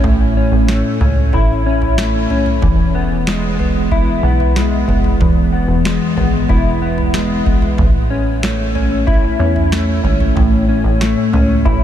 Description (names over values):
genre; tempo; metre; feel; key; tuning
dream pop; 93 BPM; 4/4; straight; A major; A4 = 441 Hz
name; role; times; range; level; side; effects
mellow electric guitar; arpeggios; 0.0-11.8 s; E2 to E4; -16 LUFS; left 1 dB; analog chorus, analog delay
plucky analog bass; bass; 0.0-11.8 s; E1 to E2; -17 LUFS; equal; none
booming analog drum machine; drums; 0.0-11.8 s; kick drum, snare drum, toms; -18 LUFS; right 1 dB; overdrive
room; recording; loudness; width
light reverb; none; -12 LUFS; side -10 dB against mid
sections
0.0-11.8 A section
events
none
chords
0.0 A; 2.6 E; 7.8 A